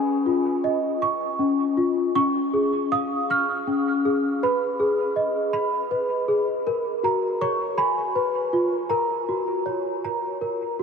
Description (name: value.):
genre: children's music, lullaby.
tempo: 53 BPM (dotted quarters).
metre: 6/8.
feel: straight.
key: F# major.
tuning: A4 = 442 Hz.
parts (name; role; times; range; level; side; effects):
worn celesta; solo; 0.0-10.8 s; C#4 to E#6; -21 LUFS; left 1 dB; analog chorus, analog delay.
room: wet huge ambient reverb, RT60 7.3 s.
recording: dreamy mix soaked in reverb.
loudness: -21 LUFS.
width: side -6 dB against mid.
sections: 0.0-10.8 A section.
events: none.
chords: 0.0 C#add9; 4.4 G#m; 6.7 F#; 7.8 Fdim; 8.9 F#.